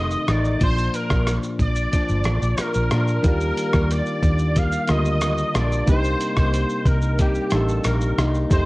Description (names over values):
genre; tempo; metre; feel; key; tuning
indie pop, bedroom pop; 91 BPM; 4/4; straight; unclear; A4 = 440 Hz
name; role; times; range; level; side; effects
clear trumpet; melody; 0.0-8.7 s; G4 to F5; -26 LUFS; equal; ensemble chorus
direct-recorded clean electric guitar; accompaniment; 0.0-8.7 s; F2 to Eb4; -26 LUFS; left 2 dB; analog chorus, warbly pitch drift
vintage muted fingered electric bass; bass; 0.0-8.7 s; F1 to Bb2; -22 LUFS; equal; none
dusty soul sampler-style drum kit; drums; 0.1-8.7 s; hi-hat, kick drum, rim click, shaker; -23 LUFS; equal; none
soft electric-piano-like synth keys; accompaniment; 3.2-8.7 s; D3 to Bb4; -28 LUFS; right 1 dB; chorus, cassette tape
room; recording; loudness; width
little or no reverb; worn, warbling old tape, cassette tape, warbly pitch drift; -18 LUFS; side -20 dB against mid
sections
0.0-8.7 A section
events
none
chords
0.0 F7; 0.6 Bb; 3.2 Ebmaj7; 5.9 Cm7